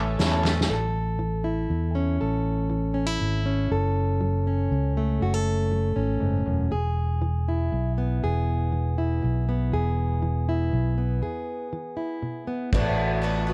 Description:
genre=indie folk with a building arrangement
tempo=120 BPM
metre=3/4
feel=straight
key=A major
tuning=A4 = 440 Hz
part: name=picked twelve-string acoustic guitar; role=accompaniment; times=0.0-0.7, 12.7-13.5 s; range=A2 to A4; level=-30 LUFS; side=equal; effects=none
part: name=warm grand piano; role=accompaniment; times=0.0-0.7 s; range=A1 to E5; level=-36 LUFS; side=equal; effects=none
part: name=warm chamber string section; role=sustained chords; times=0.0-0.7 s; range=A4 to C#6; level=-45 LUFS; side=equal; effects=none
part: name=fingered electric bass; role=bass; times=0.0-13.5 s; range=E1 to E2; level=-27 LUFS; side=equal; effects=none
part: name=soft-mallet drum kit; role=drums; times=0.2-0.7, 12.7-13.3 s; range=crash cymbal, hi-hat, kick drum, ride cymbal, snare drum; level=-28 LUFS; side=equal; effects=none
part: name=group handclap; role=percussion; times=0.3-0.5 s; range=none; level=-36 LUFS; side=equal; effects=none
part: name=fingerpicked plugged-in steel-string acoustic guitar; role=accompaniment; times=0.7-12.7 s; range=E2 to A4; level=-30 LUFS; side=equal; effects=none
room=small room ambience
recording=worn, warbling old tape, cassette tape, warbly pitch drift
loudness=-26 LUFS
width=mono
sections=0.7-12.7 A section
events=drum fill 0.4; break 11.2-12.7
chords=0.0 A; 3.7 F#m; 6.7 E; 12.7 Bm/A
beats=0.19 | 0.69 1.19 1.69 | 2.19 2.70 3.20 | 3.70 4.20 4.71 | 5.21 5.71 6.21 | 6.71 7.22 7.72 | 8.22 8.72 9.22 | 9.72 10.23 10.73 | 11.23 11.73 12.23 | 12.73 13.23

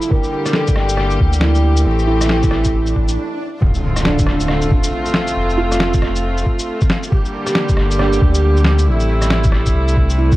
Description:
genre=future garage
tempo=137 BPM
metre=4/4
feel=swing 61% on 16ths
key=D minor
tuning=A4 = 440 Hz
part: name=felt-muted upright piano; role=accompaniment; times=0.0-10.4 s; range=D4 to Bb4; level=-23 LUFS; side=right 4 dB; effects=sidechain pumping, tape echo
part: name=rich studio string section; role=sustained chords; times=0.0-10.4 s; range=C3 to G4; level=-20 LUFS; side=equal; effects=sidechain pumping
part: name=electronic shaker, rim click and snare drum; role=drums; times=0.0-10.4 s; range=none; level=-21 LUFS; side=left 1 dB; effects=none
part: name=electronic kick drum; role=drums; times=0.1-10.4 s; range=none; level=-16 LUFS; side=equal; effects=none
part: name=warm sub bass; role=bass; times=0.8-10.4 s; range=D1 to D2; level=-16 LUFS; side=equal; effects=sidechain pumping
part: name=swell and impact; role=sound effects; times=2.9-5.4 s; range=none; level=-25 LUFS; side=left 1 dB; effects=none
room=light reverb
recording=cassette tape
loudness=-13 LUFS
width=side -17 dB against mid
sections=0.0-3.6 A section; 3.6-10.4 B section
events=swell 2.9-3.6; stop 3.2-3.6; impact 3.6-5.4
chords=0.1 Gm; 1.9 Am7; 3.6 Dm7; 5.4 F; 7.1 Gm; 8.9 Am7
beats=| 0.11 0.55 0.98 1.42 | 1.86 2.30 2.73 3.17 | 3.61 4.05 4.49 4.92 | 5.36 5.80 6.24 6.68 | 7.12 7.55 7.99 8.43 | 8.87 9.30 9.74 10.18

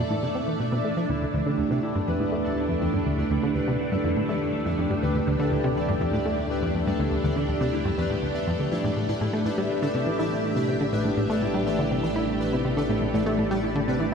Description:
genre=ambient, sequencer-driven space music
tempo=122 BPM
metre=4/4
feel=straight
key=unclear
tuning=A4 = 440 Hz
part: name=string machine, full ensemble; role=sustained chords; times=0.0-14.1 s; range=A3 to E5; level=-27 LUFS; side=right 1 dB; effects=phaser, ensemble chorus, shimmer reverb
part: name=plucky analog bass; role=riff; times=0.0-14.1 s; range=D2 to E4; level=-27 LUFS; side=equal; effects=analog delay, shimmer reverb
part: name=analog drone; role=bass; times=0.0-14.1 s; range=A1 to F2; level=-37 LUFS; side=equal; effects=chorus
part: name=pulsing gated texture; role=texture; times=0.0-14.1 s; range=D4 to E5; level=-36 LUFS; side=right 2 dB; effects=chorus, built-in reverb, shimmer reverb
part: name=concert harp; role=arpeggios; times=1.1-14.1 s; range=E3 to E5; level=-31 LUFS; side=left 4 dB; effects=auto-pan, analog delay, shimmer reverb
room=wet cathedral reverb, RT60 5.3 s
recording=dreamy mix soaked in reverb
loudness=-23 LUFS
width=side -6 dB against mid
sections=0.0-14.1 A section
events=none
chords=0.0 F; 1.1 Dm; 9.0 Am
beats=0.11 0.60 | 1.09 1.58 2.08 2.57 | 3.06 3.55 4.04 4.54 | 5.03 5.52 6.01 6.50 | 6.99 7.49 7.98 8.47 | 8.96 9.45 9.95 10.44 | 10.93 11.42 11.91 12.40 | 12.89 13.39 13.88

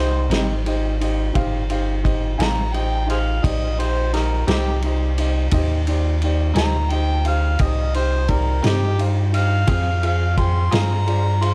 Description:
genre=slow blues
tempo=58 BPM (dotted quarters)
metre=12/8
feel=straight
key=C minor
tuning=A4 = 441 Hz
part: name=warm harmonica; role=second line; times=0.0-11.5 s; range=Eb4 to C6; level=-28 LUFS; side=equal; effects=overdrive, analog delay
part: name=clear upright piano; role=accompaniment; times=0.0-11.5 s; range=Eb4 to Ab5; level=-29 LUFS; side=equal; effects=none
part: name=punchy sub bass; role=bass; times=0.0-11.5 s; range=G1 to G2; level=-22 LUFS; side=equal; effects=none
part: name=clean electric guitar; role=accompaniment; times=0.3-10.9 s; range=C3 to Ab4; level=-29 LUFS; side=equal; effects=tremolo
part: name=vintage drum kit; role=drums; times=0.3-11.5 s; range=kick drum, ride cymbal, snare drum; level=-28 LUFS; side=equal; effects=none
room=little or no reverb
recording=dark, warm production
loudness=-20 LUFS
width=mono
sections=0.0-11.5 A section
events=harmonica solo 0.0-11.5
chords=0.0 Cm; 9.7 Fm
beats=0.32 | 1.36 2.40 3.44 4.48 | 5.52 6.56 7.60 8.64 | 9.69 10.73

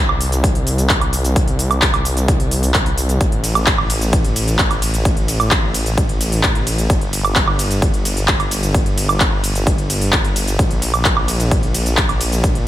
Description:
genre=EDM, festival progressive house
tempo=130 BPM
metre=4/4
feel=straight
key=G minor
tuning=A4 = 440 Hz
part: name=detuned saw bass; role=bass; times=0.0-12.7 s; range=G1 to C2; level=-19 LUFS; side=equal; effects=sidechain pumping
part: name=big-room dance drum kit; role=drums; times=0.1-12.6 s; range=handclaps, hi-hat, ride cymbal, shaker, woodblock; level=-19 LUFS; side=right 1 dB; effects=none
part: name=electronic kick drum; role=drums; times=0.4-12.5 s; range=none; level=-18 LUFS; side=equal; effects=none
room=little or no reverb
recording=none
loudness=-14 LUFS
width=side -13 dB against mid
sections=0.0-12.7 A section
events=none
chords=none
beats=0.44 0.90 | 1.36 1.82 2.28 2.75 | 3.21 3.67 4.13 4.59 | 5.05 5.51 5.98 6.44 | 6.90 7.36 7.82 8.28 | 8.74 9.21 9.67 10.13 | 10.59 11.05 11.52 11.98 | 12.44

